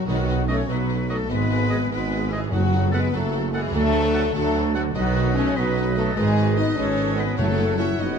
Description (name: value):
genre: cinematic, heroic adventure film score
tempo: 98 BPM (dotted quarters)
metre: 6/8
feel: straight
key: B mixolydian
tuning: A4 = 443 Hz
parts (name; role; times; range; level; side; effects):
- warm symphonic violin section; melody; 0.0-8.2 s; F#4 to E5; -34 LUFS; left 5 dB; none
- bright small flute group; second line; 0.0-8.2 s; F#4 to E5; -32 LUFS; left 2 dB; none
- clear clarinet; second line; 0.0-8.2 s; F#4 to C#5; -36 LUFS; left 1 dB; none
- clear oboe; second line; 0.0-8.2 s; D#5 to F#5; -35 LUFS; right 2 dB; none
- mellow French horn section; sustained chords; 0.0-8.2 s; F#3 to E4; -25 LUFS; left 5 dB; none
- dark chamber cello section; bass; 0.0-8.2 s; F#2 to D3; -30 LUFS; right 5 dB; none
- warm symphonic violin section; second line; 0.1-8.1 s; A4 to F#5; -39 LUFS; left 2 dB; none
- rich symphonic viola section; accompaniment; 0.1-8.2 s; C#3 to A4; -31 LUFS; right 2 dB; none
- clear symphonic double bass section; bass; 0.1-8.2 s; F#1 to D2; -27 LUFS; right 4 dB; none
- mellow tuba; bass; 0.1-8.2 s; F#1 to D2; -28 LUFS; right 6 dB; none
- timpani; percussion; 0.1-3.1, 7.4-8.0 s; F#2 to B2; -28 LUFS; equal; none
room: moderate scoring stage reverb, RT60 1.8 s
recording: none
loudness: -19 LUFS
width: side -6 dB against mid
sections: 0.1-8.2 A section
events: none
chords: 0.1 B; 1.3 G#m; 2.5 F#m; 3.7 D; 5.0 B; 6.2 G#m; 7.4 F#m